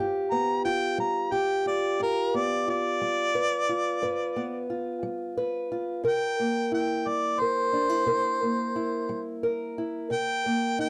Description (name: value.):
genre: acoustic country blues, solo or duo.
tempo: 59 BPM (dotted quarters).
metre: 12/8.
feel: straight.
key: unclear.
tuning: A4 = 440 Hz.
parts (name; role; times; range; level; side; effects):
fingerpicked old ladder-braced acoustic guitar; accompaniment; 0.0-10.9 s; G2 to B4; -30 LUFS; equal; none.
mellow harmonica; melody; 0.3-10.9 s; Bb4 to Bb5; -30 LUFS; equal; none.
room: moderate studio reverb, RT60 0.5 s.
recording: dark, warm production.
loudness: -27 LUFS.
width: mono.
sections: 0.0-10.9 A section.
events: none.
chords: 0.0 G7; 6.1 C7; 10.1 Cm7.